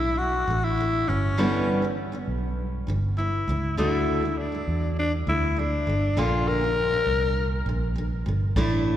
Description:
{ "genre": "acoustic pop", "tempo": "100 BPM", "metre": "4/4", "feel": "straight", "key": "unclear", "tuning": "A4 = 440 Hz", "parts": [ { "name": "raspy alto saxophone", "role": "melody", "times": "0.0-7.7 s", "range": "C#4 to Bb4", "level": "-27 LUFS", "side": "left 2 dB", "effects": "none" }, { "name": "vintage muted fingered electric bass", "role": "bass", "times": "0.0-9.0 s", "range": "G1 to E2", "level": "-26 LUFS", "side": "right 1 dB", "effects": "none" }, { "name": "picked steel-string acoustic guitar", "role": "accompaniment", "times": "0.5-9.0 s", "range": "G2 to F#4", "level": "-29 LUFS", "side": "equal", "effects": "none" }, { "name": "kick drum", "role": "drums", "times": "8.6-8.7 s", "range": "none", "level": "-28 LUFS", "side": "equal", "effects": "none" } ], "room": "wet cathedral reverb, RT60 4.2 s", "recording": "recorded in a church or concert hall", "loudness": "-22 LUFS", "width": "side -11 dB against mid", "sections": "0.0-9.0 A section", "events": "none", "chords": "0.0 Asus4; 1.1 G6; 3.8 D; 6.2 Bb" }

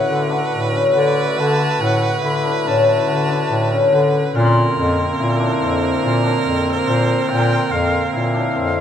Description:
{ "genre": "contemporary instrumental, chamber music in an uneven meter", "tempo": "142 BPM", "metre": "7/4", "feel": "straight", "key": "unclear", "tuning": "A4 = 440 Hz", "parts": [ { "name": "bright reedy silver concert flute", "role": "melody", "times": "0.0-8.8 s", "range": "B#4 to B5", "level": "-24 LUFS", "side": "equal", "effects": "none" }, { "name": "clear viola", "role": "second line", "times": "0.0-8.8 s", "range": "A#4 to B4", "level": "-24 LUFS", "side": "right 4 dB", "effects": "none" }, { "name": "warm woodwind section", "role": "sustained chords", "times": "0.0-8.8 s", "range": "D3 to F#4", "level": "-24 LUFS", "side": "right 3 dB", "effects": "none" }, { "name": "cimbalom", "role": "arpeggios", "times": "0.0-8.8 s", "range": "B#3 to F#4", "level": "-20 LUFS", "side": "left 4 dB", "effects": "none" }, { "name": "clear bass clarinet", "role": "bass", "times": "0.1-8.8 s", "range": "E#2 to D3", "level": "-19 LUFS", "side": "left 1 dB", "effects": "none" }, { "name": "glockenspiel with rubber mallets", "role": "texture", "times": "4.5-5.7 s", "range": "B#5", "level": "-27 LUFS", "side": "left 2 dB", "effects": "none" } ], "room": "light reverb", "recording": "close, detailed microphones", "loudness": "-15 LUFS", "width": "side -9 dB against mid", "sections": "0.0-8.8 A section", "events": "none", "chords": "0.0 D; 4.3 A#add9" }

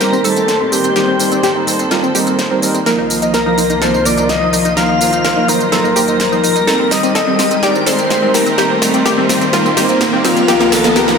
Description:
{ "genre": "progressive house", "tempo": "126 BPM", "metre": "4/4", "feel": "straight", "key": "C dorian", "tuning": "A4 = 440 Hz", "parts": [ { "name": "soft octave-layered synth lead", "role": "melody", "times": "0.0-11.2 s", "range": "F4 to F5", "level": "-17 LUFS", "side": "left 3 dB", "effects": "chorus, tape echo" }, { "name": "airy dreamy lead", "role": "second line", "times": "0.0-11.2 s", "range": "F5 to F6", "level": "-22 LUFS", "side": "right 1 dB", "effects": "chorus, phaser, cassette tape, dub echo" }, { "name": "warm symphonic string section", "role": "sustained chords", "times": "0.0-11.2 s", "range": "C2 to C5", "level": "-21 LUFS", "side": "right 1 dB", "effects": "none" }, { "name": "analog pluck", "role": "arpeggios", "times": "0.0-11.1 s", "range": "Bb3 to Bb4", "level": "-19 LUFS", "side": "left 2 dB", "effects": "chorus, phaser, vintage 12-bit sampler grit, dub echo" }, { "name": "soft supersaw", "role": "stabs", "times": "0.0-11.2 s", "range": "F3 to Eb5", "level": "-17 LUFS", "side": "right 2 dB", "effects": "vintage 12-bit sampler grit, low-pass filter, dub echo" }, { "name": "pop drum kit", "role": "drums", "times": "0.0-11.2 s", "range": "hi-hat, snare drum, tambourine", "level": "-19 LUFS", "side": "equal", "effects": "high-pass filter on perc, studio reverb, high-pass filter on snare, high-pass filter on hats" }, { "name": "riser", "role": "sound effects", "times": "2.5-11.2 s", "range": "none", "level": "-22 LUFS", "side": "equal", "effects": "none" } ], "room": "wet recital hall reverb, RT60 1.6 s", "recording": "none", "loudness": "-11 LUFS", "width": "side -5 dB against mid", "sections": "0.0-11.2 A section", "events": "build-up 0.0-11.2; drum fill 0.0-11.2; filter sweep on supersaw synth 0.0-11.2; riser 2.5-11.2", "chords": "0.0 Cm7; 2.9 Ebsus2/C; 6.7 Cm7; 10.5 Ebsus2/C" }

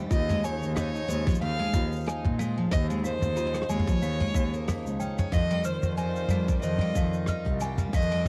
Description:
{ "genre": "folktronica", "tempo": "92 BPM", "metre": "4/4", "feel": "swing 56% on 16ths", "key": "unclear", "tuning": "A4 = 440 Hz", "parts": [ { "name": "toy piano", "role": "second line", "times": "0.0-8.2 s", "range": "F4 to F6", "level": "-42 LUFS", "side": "equal", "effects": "tape echo" }, { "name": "hand-pumped harmonium", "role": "sustained chords", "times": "0.0-8.3 s", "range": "Db3 to F5", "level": "-42 LUFS", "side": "equal", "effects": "none" }, { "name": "picked twelve-string acoustic guitar", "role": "arpeggios", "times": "0.0-8.3 s", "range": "Eb3 to Eb4", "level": "-35 LUFS", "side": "equal", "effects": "none" }, { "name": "warm violin", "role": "melody", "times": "0.1-8.3 s", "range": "C5 to F5", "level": "-35 LUFS", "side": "equal", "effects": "tape echo" }, { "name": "warm cello", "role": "bass", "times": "0.1-8.3 s", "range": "C2 to Bb2", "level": "-33 LUFS", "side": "equal", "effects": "none" }, { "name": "electronic kick drum", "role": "drums", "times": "0.1-8.1 s", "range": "none", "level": "-29 LUFS", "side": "equal", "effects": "none" }, { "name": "soft brush drum kit", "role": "drums", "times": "0.1-8.3 s", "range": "hi-hat, rim click, shaker, toms", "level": "-33 LUFS", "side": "equal", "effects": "none" } ], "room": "small room ambience", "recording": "dry, close 1970s-style studio recording", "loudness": "-28 LUFS", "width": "mono", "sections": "0.0-8.3 A section", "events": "none", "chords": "0.1 Eb9sus4; 5.3 Fm9" }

